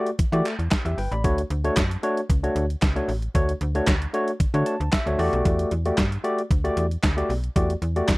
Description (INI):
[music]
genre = early-eighties boogie funk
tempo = 114 BPM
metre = 4/4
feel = straight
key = D major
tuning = A4 = 440 Hz
[part]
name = barky tine electric piano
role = accompaniment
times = 0.0-8.1 s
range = A3 to B5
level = -24 LUFS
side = left 1 dB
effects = overdrive
[part]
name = detuned 8-bit digital drum machine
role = drums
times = 0.1-8.2 s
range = handclaps, hi-hat, kick drum, snare drum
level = -23 LUFS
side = equal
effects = none
[part]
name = slap-like FM bass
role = bass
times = 0.2-8.2 s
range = G1 to E3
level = -25 LUFS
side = equal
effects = none
[part]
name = group handclap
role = percussion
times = 0.5-8.2 s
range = none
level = -33 LUFS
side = right 2 dB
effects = none
[sound]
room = little or no reverb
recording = dry, close 1970s-style studio recording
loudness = -21 LUFS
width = side -23 dB against mid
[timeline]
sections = 0.0-8.2 A section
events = tine electric piano fill 4.4-5.5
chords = 0.0 Em11; 1.2 Dmaj7; 5.2 Em11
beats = 0.19 0.72 | 1.24 1.77 2.29 2.82 | 3.35 3.87 4.40 4.93 | 5.45 5.98 6.50 7.03 | 7.56 8.08